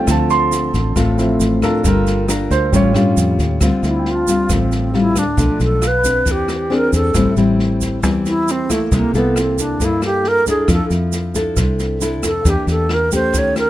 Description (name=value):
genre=bossa nova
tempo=136 BPM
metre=4/4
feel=straight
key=D minor from 3.6 s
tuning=A4 = 440 Hz
part: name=nylon-string guitar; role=accompaniment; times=0.0-13.7 s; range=G2 to Bb4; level=-18 LUFS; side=left 2 dB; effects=none
part: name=warm grand piano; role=accompaniment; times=0.0-12.5 s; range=F3 to C6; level=-20 LUFS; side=right 4 dB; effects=none
part: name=fingered electric bass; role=bass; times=0.1-13.7 s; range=G1 to G2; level=-19 LUFS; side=equal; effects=none
part: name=open jazz drum kit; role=drums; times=0.1-13.7 s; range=kick drum, rim click, snare drum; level=-23 LUFS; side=equal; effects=none
part: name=tube shaker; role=percussion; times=0.1-13.7 s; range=none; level=-27 LUFS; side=right 12 dB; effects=none
part: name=alto flute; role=melody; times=3.9-13.7 s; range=A3 to Db5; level=-18 LUFS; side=right 1 dB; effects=none
room=little or no reverb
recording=close, detailed microphones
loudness=-14 LUFS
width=side -14 dB against mid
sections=0.0-3.6 A section; 3.6-13.7 A section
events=grand piano solo 0.0-3.6; alto flute solo 3.6-13.7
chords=0.1 Dm7; 1.8 Gm7; 2.7 Aaug7; 3.6 Dm11; 5.4 Bm7b5; 6.3 E7alt; 7.1 Am7; 8.9 C13; 10.7 F6; 12.5 Em7b5